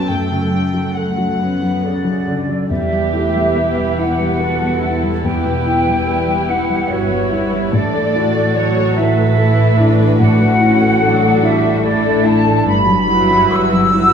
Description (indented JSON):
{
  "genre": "cinematic, emotional film score for orchestra",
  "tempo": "72 BPM",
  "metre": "3/4",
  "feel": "rubato",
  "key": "E dorian",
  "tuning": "A4 = 440 Hz",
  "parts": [
    { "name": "warm studio violin section", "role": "melody", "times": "0.0-2.3 s", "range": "F#5 to G5", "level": "-25 LUFS", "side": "left 3 dB", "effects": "none" },
    { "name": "dark concert grand piano", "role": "accompaniment", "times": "0.0-14.1 s", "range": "E2 to B4", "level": "-19 LUFS", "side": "left 2 dB", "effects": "none" },
    { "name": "warm studio viola section", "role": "accompaniment", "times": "0.0-14.1 s", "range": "C#3 to A4", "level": "-21 LUFS", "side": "right 1 dB", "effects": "none" },
    { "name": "warm studio cello section", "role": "bass", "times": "0.0-14.1 s", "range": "E2 to A2", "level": "-22 LUFS", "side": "right 2 dB", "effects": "none" },
    { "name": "flute section", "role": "second line", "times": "1.8-14.1 s", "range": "C#5 to E6", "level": "-18 LUFS", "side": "equal", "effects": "none" },
    { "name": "dark studio violin section", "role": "second line", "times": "2.7-14.1 s", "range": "E4 to D5", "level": "-22 LUFS", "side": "left 2 dB", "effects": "none" },
    { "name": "dark studio double bass section", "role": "bass", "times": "2.7-14.1 s", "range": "E1 to A1", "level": "-20 LUFS", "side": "right 2 dB", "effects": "none" }
  ],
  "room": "wet scoring stage reverb, RT60 1.7 s",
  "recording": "minimal, uncompressed stereo recording",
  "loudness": "-13 LUFS",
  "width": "side -7 dB against mid",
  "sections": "0.0-2.7 A section; 2.7-14.1 A section",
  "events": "none",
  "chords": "0.0 F#m; 2.7 Emadd9; 7.7 Asus4; 12.7 Emadd9/G"
}